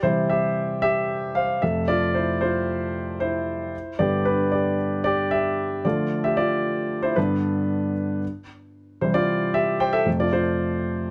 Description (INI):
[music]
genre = pop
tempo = 114 BPM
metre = 4/4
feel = straight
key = C major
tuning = A4 = 440 Hz
[part]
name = warm concert grand piano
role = solo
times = 0.0-11.1 s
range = F2 to G5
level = -23 LUFS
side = equal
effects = none
[sound]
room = light reverb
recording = none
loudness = -23 LUFS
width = mono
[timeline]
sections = 0.0-8.2 A section; 8.2-11.1 B section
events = grand piano solo 0.0-8.2, 8.2-11.1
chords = 0.0 C; 1.6 F; 3.7 G; 5.8 Dm; 7.2 G; 8.2 C; 10.1 F